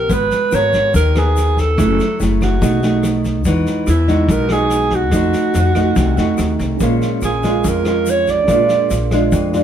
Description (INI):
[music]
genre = bossa nova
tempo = 143 BPM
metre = 4/4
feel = straight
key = unclear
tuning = A4 = 440 Hz
[part]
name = breathy alto saxophone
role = melody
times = 0.0-9.1 s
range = E4 to D5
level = -17 LUFS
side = right 3 dB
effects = none
[part]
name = nylon-string guitar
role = accompaniment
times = 0.0-9.6 s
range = F2 to Bb4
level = -18 LUFS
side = right 1 dB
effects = none
[part]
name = upright bass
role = bass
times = 0.0-9.6 s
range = Gb1 to F2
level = -18 LUFS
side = left 1 dB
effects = none
[part]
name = vintage brush drum kit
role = drums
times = 0.1-9.6 s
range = kick drum, rim click, snare drum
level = -23 LUFS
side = equal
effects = none
[part]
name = egg shaker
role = percussion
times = 0.1-9.6 s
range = none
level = -36 LUFS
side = left 7 dB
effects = none
[part]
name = tine electric piano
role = accompaniment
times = 6.8-9.6 s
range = Db4 to F5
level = -26 LUFS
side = right 3 dB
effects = medium stereo tremolo
[sound]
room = moderate studio reverb, RT60 0.9 s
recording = heard from further back in the room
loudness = -13 LUFS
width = side -9 dB against mid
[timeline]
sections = 0.0-9.6 A section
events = none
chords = 0.1 Abm9; 1.8 Gbm9; 2.6 B6; 3.5 Emaj9; 5.1 F7b9; 6.8 Bbm7; 8.5 Bb7